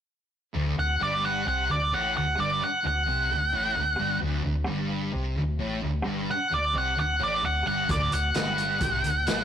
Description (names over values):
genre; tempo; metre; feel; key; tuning
blues rock power trio and southern rock; 131 BPM; 4/4; straight; D major; A4 = 441 Hz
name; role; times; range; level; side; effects
thick fuzz guitar; riff; 0.5-9.4 s; D2 to C3; -31 LUFS; equal; distortion
hollow-body short-scale fingered electric bass; bass; 0.5-9.4 s; D1 to C2; -30 LUFS; equal; none
octave-fuzz lead guitar; melody; 0.8-9.4 s; D5 to F#5; -25 LUFS; right 1 dB; distortion
vintage drum kit; drums; 7.9-9.4 s; hi-hat, kick drum, snare drum; -30 LUFS; equal; none
room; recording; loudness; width
moderate stone room reverb, RT60 1.1 s; rough rehearsal-room recording, warm saturation; -24 LUFS; side -9 dB against mid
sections
0.5-9.4 A section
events
none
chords
0.5 D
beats
| 0.54 1.00 1.46 1.92 | 2.38 2.84 3.30 3.76 | 4.22 4.68 5.14 5.59 | 6.05 6.51 6.97 7.43 | 7.89 8.35 8.81 9.27